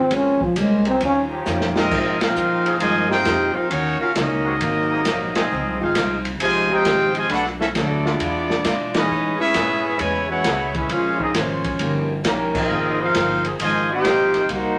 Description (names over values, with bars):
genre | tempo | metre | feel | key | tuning
jazz, big band swing | 133 BPM | 4/4 | swing 66% on 8ths | Ab major | A4 = 440 Hz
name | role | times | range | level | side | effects
breathy trombone | melody | 0.0-1.2 s | F3 to Db4 | -20 LUFS | equal | none
dark trombone section | sustained chords | 0.0-13.5 s | C3 to Bb4 | -31 LUFS | equal | none
upright bass | bass | 0.0-14.8 s | G1 to B2 | -31 LUFS | equal | none
picked steel-string acoustic guitar | accompaniment | 0.1-14.8 s | Ab2 to C5 | -32 LUFS | equal | none
warm baby grand piano | accompaniment | 0.1-2.3 s | Ab3 to F4 | -31 LUFS | equal | none
open jazz drum kit | drums | 0.1-14.6 s | crash cymbal, hi-hat, kick drum, ride cymbal, snare drum | -28 LUFS | equal | none
clear trumpet section | melody | 1.8-14.8 s | Ab3 to Ab5 | -24 LUFS | equal | none
mellow trombone section | second line | 1.8-14.8 s | C3 to G4 | -26 LUFS | equal | none
room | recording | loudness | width
wet studio reverb, RT60 0.5 s | none | -20 LUFS | mono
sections
0.0-1.9 A section; 1.9-14.8 B section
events
trombone solo 0.0-1.9; drum fill 1.5-1.9; band accent 2.1, 5.3, 8.9, 12.5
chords
0.1 Bbm9; 1.0 Eb9; 1.9 Ab69; 3.7 Ebm7; 4.6 Ab9; 5.5 Dbmaj9; 7.3 Bm7; 8.2 E7b9; 9.1 Amaj9; 10.9 Bbm9; 11.8 Eb7; 12.7 Ab69